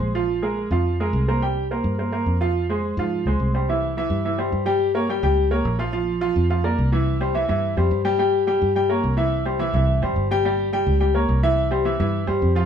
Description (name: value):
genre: latin, salsa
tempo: 213 BPM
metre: 4/4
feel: straight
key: unclear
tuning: A4 = 440 Hz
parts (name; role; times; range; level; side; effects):
- clear upright piano; accompaniment; 0.0-12.7 s; E3 to G5; -21 LUFS; equal; none
- fingered electric bass; bass; 0.0-12.7 s; G1 to Ab2; -23 LUFS; equal; none
room: wet studio reverb, RT60 0.6 s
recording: band playing live in one room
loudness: -19 LUFS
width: side -8 dB against mid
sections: 0.0-3.7 A section; 3.7-12.7 B section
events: none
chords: 0.0 Bb5; 1.4 C7sus4; 2.5 Fm; 3.7 C; 4.8 Gdim; 5.9 Bb; 7.1 C; 8.2 Gdim; 9.3 C; 10.4 Gdim; 11.6 C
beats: 0.00 | 0.28 0.57 0.85 1.14 | 1.42 1.70 1.98 2.27 | 2.55 2.83 3.12 3.40 | 3.68 3.96 4.24 4.53 | 4.81 5.09 5.37 5.65 | 5.94 6.22 6.50 6.78 | 7.06 7.35 7.63 7.91 | 8.19 8.47 8.76 9.04 | 9.32 9.60 9.88 10.17 | 10.45 10.73 11.01 11.29 | 11.57 11.86 12.14 12.42